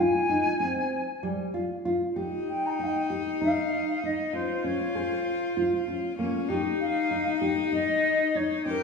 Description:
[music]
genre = contemporary instrumental, chamber music in an uneven meter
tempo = 194 BPM (eighths)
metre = 7/8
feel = straight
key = unclear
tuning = A4 = 440 Hz
[part]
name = bright wooden flute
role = melody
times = 0.0-8.8 s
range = Bb4 to Bb5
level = -29 LUFS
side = left 2 dB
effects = none
[part]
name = nylon-string guitar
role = arpeggios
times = 0.0-8.8 s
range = G3 to Ab4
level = -29 LUFS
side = right 1 dB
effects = none
[part]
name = bright cello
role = second line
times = 2.2-8.8 s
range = Db4 to G4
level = -29 LUFS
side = left 6 dB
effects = none
[sound]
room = wet recital hall reverb, RT60 1.4 s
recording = heard from further back in the room, small room reverb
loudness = -25 LUFS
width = side -4 dB against mid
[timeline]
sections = 0.0-2.2 A section; 2.2-8.8 A section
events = none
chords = 0.0 Abmaj7; 2.2 Ebadd9; 4.3 Dbmaj7; 6.5 Eb

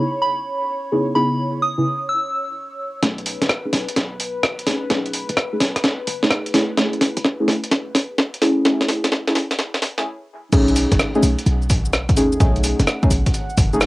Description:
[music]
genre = UK garage, two-step garage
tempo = 128 BPM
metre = 4/4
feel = swing 67% on 16ths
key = unclear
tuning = A4 = 438 Hz
[part]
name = soft synth bell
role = melody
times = 0.0-3.0 s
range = B5 to E6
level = -22 LUFS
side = right 1 dB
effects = chorus, cassette tape, tape echo
[part]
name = warm analog pad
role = sustained chords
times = 0.0-13.9 s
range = B4 to F#5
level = -32 LUFS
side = left 1 dB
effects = chorus, sidechain pumping, cassette tape
[part]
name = deep mellow chord stab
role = stabs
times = 0.0-13.9 s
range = C#3 to G#4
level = -21 LUFS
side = equal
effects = chorus, cassette tape, tape echo
[part]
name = short 808-style bass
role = bass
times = 3.0-13.9 s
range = F#1 to D#2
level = -22 LUFS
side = equal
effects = tube saturation, high-pass filter
[part]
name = breakbeat sampler-style drum kit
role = drums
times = 3.0-13.9 s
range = crash cymbal, hi-hat, rim click, shaker, snare drum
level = -20 LUFS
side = equal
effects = cassette tape
[part]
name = electronic kick drum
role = drums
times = 3.0-13.7 s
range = none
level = -20 LUFS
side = equal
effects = high-pass filter on kick, cassette tape, high-pass filter on room
[sound]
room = moderate booth ambience, RT60 0.3 s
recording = home recording on cassette, high-pass filter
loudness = -17 LUFS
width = side -20 dB against mid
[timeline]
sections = 0.0-3.0 A section; 3.0-10.5 B section; 10.5-13.9 C section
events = filter sweep on synth stab 0.0-3.0, 3.0-10.5; build-up 3.0-10.5; drum fill 3.0-10.1; stop 10.1-10.5; drop 10.5-13.9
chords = 0.0 C#m9; 3.0 B13; 6.5 F#m9; 10.3 N.C.; 10.5 B13

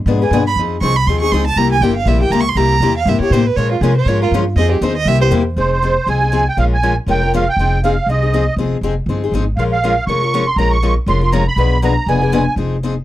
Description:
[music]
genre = acoustic string swing (jazz manouche)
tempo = 240 BPM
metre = 4/4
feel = swing 57% on 8ths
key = F minor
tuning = A4 = 439 Hz
[part]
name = upright bass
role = bass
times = 0.0-13.0 s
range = F1 to C3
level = -16 LUFS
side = equal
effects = none
[part]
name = picked steel-string acoustic guitar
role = accompaniment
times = 0.1-12.9 s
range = B2 to B4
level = -18 LUFS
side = left 4 dB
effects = none
[part]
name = warm violin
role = second line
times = 0.2-5.3 s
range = F4 to Db6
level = -18 LUFS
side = right 6 dB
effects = none
[part]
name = musette accordion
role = melody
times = 5.6-12.5 s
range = C5 to Db6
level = -17 LUFS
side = right 3 dB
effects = none
[sound]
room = light reverb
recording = dry, close 1970s-style studio recording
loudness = -13 LUFS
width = side -14 dB against mid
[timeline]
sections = 0.0-5.6 A section; 5.6-13.0 B section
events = violin solo 0.0-5.6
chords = 0.0 Bdim7; 0.6 Fm7; 1.6 C7; 3.6 Bbm9; 4.6 Fm7; 5.1 C7; 5.6 Fm7; 6.6 Bbm7; 7.6 Fm7; 9.6 Bbm7; 11.6 Bdim7

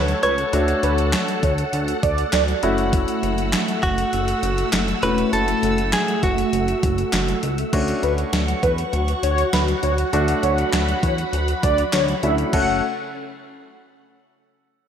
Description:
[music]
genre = synth-pop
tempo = 100 BPM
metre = 4/4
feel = straight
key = unclear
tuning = A4 = 439 Hz
[part]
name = direct-recorded clean electric guitar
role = melody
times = 0.0-7.4 s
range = F#4 to C#5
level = -23 LUFS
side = right 1 dB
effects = analog delay
[part]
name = mellow synth brass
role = second line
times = 0.0-2.7, 8.0-12.8 s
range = B4 to F#5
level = -24 LUFS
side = right 1 dB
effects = chorus, analog delay
[part]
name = warm concert grand piano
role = accompaniment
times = 0.0-12.8 s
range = A3 to A4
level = -26 LUFS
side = left 1 dB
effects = none
[part]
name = string machine, cellos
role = sustained chords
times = 0.0-12.8 s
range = A3 to E6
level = -25 LUFS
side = equal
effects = phaser, ensemble chorus
[part]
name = chorused synth bass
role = bass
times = 0.0-12.8 s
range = E1 to E2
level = -24 LUFS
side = equal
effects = none
[part]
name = gated 80s digital drum machine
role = drums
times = 0.1-12.7 s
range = crash cymbal, handclaps, hi-hat, kick drum, snare drum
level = -24 LUFS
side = equal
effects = gated reverb, gated reverb snare, overdrive
[sound]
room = light reverb, digital ambience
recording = none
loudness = -18 LUFS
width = side -8 dB against mid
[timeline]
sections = 0.0-7.7 A section; 7.7-12.5 B section; 12.5-14.9 C section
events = none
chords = 0.0 Dmaj7; 2.6 F#m7; 7.7 Dmaj7; 12.5 F#m

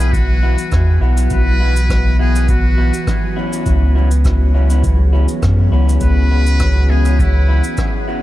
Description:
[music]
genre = ambient dub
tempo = 102 BPM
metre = 4/4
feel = swing 53% on 16ths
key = C# minor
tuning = A4 = 439 Hz
[part]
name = trumpet with metal mute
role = melody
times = 0.0-8.1 s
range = E4 to B4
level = -24 LUFS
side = left 1 dB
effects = vintage 12-bit sampler grit, dub echo
[part]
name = warm analog pad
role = sustained chords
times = 0.0-8.2 s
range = E3 to C#5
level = -24 LUFS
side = left 1 dB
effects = chorus
[part]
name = electric guitar through a small old amp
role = stabs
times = 0.0-8.2 s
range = B3 to F#4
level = -25 LUFS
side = left 2 dB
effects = dub echo
[part]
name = soft dub sub bass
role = bass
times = 0.0-7.6 s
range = B1 to F#2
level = -12 LUFS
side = equal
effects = tube saturation
[part]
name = cabasa and rim click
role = drums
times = 0.0-7.9 s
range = none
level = -32 LUFS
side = equal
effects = dub echo
[part]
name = bubbling stepped-filter texture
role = texture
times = 0.0-8.2 s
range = F#3 to F#4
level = -28 LUFS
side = right 1 dB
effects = chorus, built-in reverb
[part]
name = electronic kick drum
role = drums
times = 0.1-7.9 s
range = none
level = -20 LUFS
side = equal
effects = none
[sound]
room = little or no reverb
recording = none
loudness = -12 LUFS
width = side -15 dB against mid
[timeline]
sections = 0.0-8.2 A section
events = none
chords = 0.0 Bsus4; 3.7 C#m7

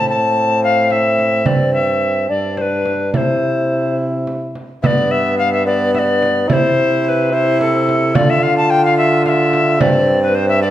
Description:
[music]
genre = classical, renaissance-style consort dance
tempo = 72 BPM (dotted quarters)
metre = 6/8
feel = straight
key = unclear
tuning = A4 = 441 Hz
[part]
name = tenor recorder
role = melody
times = 0.0-10.7 s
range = A4 to A5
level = -16 LUFS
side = left 2 dB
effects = none
[part]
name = warm bassoon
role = accompaniment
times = 0.0-10.7 s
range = G3 to F4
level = -18 LUFS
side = equal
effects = none
[part]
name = warm trombone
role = bass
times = 0.0-10.7 s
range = G2 to D3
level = -20 LUFS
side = right 2 dB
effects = none
[part]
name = frame drum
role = percussion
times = 0.9-10.1 s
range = none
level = -20 LUFS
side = right 3 dB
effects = none
[sound]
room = wet recital hall reverb, RT60 1.3 s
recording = none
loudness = -13 LUFS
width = side -12 dB against mid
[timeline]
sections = 0.0-4.8 A section; 4.8-10.7 A section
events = none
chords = 0.0 Am; 1.5 Gsus4; 2.3 G; 3.1 C; 4.8 G; 6.5 C; 8.2 Dm; 9.8 Gsus4

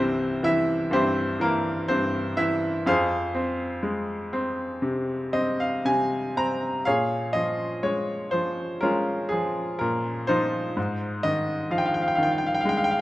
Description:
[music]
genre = classical, lyrical solo piano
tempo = 62 BPM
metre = 4/4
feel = rubato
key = F minor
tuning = A4 = 440 Hz
[part]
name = bright upright piano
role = solo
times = 0.0-13.0 s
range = C2 to Bb5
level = -23 LUFS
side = equal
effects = none
[sound]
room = light reverb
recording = close, detailed microphones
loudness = -23 LUFS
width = side -16 dB against mid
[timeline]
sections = 0.0-6.9 A section; 6.9-13.0 B section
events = upright piano fill 4.8-6.9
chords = 0.0 C; 2.9 Fm; 6.9 Bbm7; 10.8 Fm7/Ab

